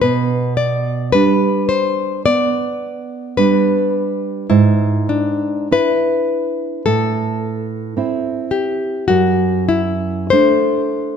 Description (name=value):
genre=romantic duo for nylon-string guitar and classical guitar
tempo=47-55 BPM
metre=4/4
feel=rubato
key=G major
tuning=A4 = 440 Hz
part: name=nylon-string guitar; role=melody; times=0.0-11.2 s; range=D4 to D5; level=-18 LUFS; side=left 6 dB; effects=none
part: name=nylon-string guitar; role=accompaniment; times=0.0-11.2 s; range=F#2 to E4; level=-18 LUFS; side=right 5 dB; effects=none
room=moderate scoring stage reverb, RT60 1.6 s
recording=none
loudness=-14 LUFS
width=side -7 dB against mid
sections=0.0-11.2 A section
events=none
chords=0.0 G/B; 4.5 E7/G#; 6.9 Am; 9.1 D7/F#